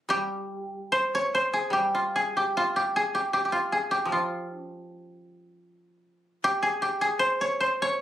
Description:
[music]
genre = japanese traditional, Japanese chamber music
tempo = 72-78 BPM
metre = 4/4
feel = rubato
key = unclear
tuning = A4 = 440 Hz
[part]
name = koto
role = melody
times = 0.1-8.0 s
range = F4 to Db5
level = -24 LUFS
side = equal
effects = none
[part]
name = koto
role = accompaniment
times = 0.1-6.4 s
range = F3 to G3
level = -35 LUFS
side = left 1 dB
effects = none
[sound]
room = light reverb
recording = recorded on a phone in the room, studio ambience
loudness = -24 LUFS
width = side -12 dB against mid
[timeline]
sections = 0.1-8.0 A section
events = none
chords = none

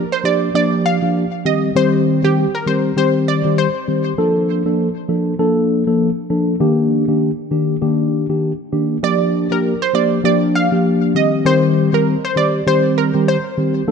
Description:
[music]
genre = afrobeats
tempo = 99 BPM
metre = 4/4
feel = swing 58% on 16ths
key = unclear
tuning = A4 = 440 Hz
[part]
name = mellow tine electric piano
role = accompaniment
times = 0.0-13.9 s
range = Eb3 to A4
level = -15 LUFS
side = left 1 dB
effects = phaser
[part]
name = analog pluck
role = melody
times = 0.1-4.0, 9.0-13.7 s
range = G4 to F5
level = -19 LUFS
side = right 1 dB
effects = chorus, ping-pong delay
[sound]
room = moderate lush hall reverb, RT60 2.4 s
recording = dark, warm production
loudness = -14 LUFS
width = side -6 dB against mid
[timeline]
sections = 0.0-9.0 A section; 9.0-13.9 B section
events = none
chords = 0.0 Gm7; 1.5 Cm; 4.2 Bbmaj7; 6.6 Ebmaj7; 9.0 Gm7; 11.2 Cm

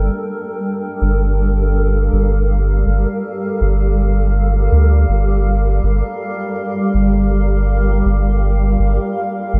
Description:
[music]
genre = ambient dub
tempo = 81 BPM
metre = 4/4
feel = swing 60% on 16ths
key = G minor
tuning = A4 = 441 Hz
[part]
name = granular cloud pad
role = sustained chords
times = 0.0-9.6 s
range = G3 to G5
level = -22 LUFS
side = equal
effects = built-in reverb
[part]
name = soft dub sub bass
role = bass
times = 0.0-9.6 s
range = G1 to D2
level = -16 LUFS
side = equal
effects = none
[sound]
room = little or no reverb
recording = none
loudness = -16 LUFS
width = mono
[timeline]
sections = 0.0-9.6 A section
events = none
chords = 0.0 Gm9

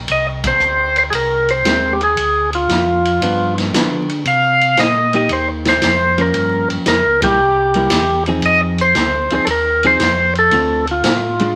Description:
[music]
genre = soul jazz organ trio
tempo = 115 BPM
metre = 4/4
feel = swing 69% on 8ths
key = C minor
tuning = A4 = 441 Hz
[part]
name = mellow tonewheel organ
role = bass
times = 0.0-11.5 s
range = Bb1 to D3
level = -25 LUFS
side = equal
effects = slow rotary speaker
[part]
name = percussive tonewheel organ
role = melody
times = 0.1-11.6 s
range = F4 to F5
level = -16 LUFS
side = equal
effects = slow rotary speaker
[part]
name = swinging big-band drum kit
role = drums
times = 0.1-11.5 s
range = hi-hat, kick drum, ride cymbal, snare drum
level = -23 LUFS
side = equal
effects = none
[part]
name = hollow-body jazz guitar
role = accompaniment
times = 1.7-11.6 s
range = D3 to Bb4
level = -22 LUFS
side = equal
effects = none
[sound]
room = moderate studio reverb, RT60 0.8 s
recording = vinyl crackle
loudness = -15 LUFS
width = mono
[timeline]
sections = 0.0-11.6 A section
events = band accent 0.3, 7.1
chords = 0.1 Abmaj9; 2.2 Ddim; 3.2 G7; 4.3 Cm7; 6.3 Gm7b5; 7.4 C7; 8.4 Fm7; 10.5 Dm7

